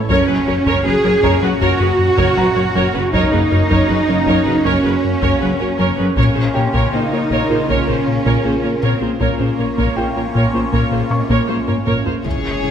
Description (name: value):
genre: cinematic, hybrid orchestral and electronic film score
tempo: 79 BPM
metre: 4/4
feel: straight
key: unclear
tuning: A4 = 440 Hz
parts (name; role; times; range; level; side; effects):
- warm symphonic viola section; accompaniment; 0.0-12.7 s; G#3 to C#5; -22 LUFS; right 2 dB; low-pass filter
- phased analog pad; sustained chords; 0.0-12.7 s; A#2 to C#5; -22 LUFS; right 1 dB; phaser, chorus, low-pass filter
- smooth synth bass; riff; 0.0-12.7 s; C#2 to A#3; -20 LUFS; left 3 dB; low-pass filter
- rich symphonic double bass section; bass; 0.0-12.7 s; F#1 to C#2; -26 LUFS; right 3 dB; none
- felt-muted upright piano; texture; 0.0-12.3 s; G4 to C#6; -29 LUFS; left 1 dB; digital delay
- mellow French horn section; sustained chords; 0.1-11.5 s; A#3 to G#4; -22 LUFS; left 2 dB; low-pass filter
- warbly dusty pluck; arpeggios; 0.1-12.7 s; C#3 to A#4; -26 LUFS; right 4 dB; chorus, low-pass filter, digital delay
- rich symphonic cello section; bass; 0.1-12.7 s; C#3 to G#4; -21 LUFS; right 3 dB; none
- taiko ensemble; drums; 0.1-12.7 s; none; -25 LUFS; equal; none
- impact; sound effects; 12.2-12.7 s; none; -26 LUFS; equal; none
- rich symphonic violin section; second line; 12.3-12.7 s; G#4 to C#5; -23 LUFS; left 5 dB; none
room: moderate scoring stage reverb, RT60 1.4 s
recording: none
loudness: -14 LUFS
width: side -8 dB against mid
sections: 0.0-12.2 A section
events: drum fill 11.5-12.2; impact 12.2-12.7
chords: 0.1 F#; 6.2 A#m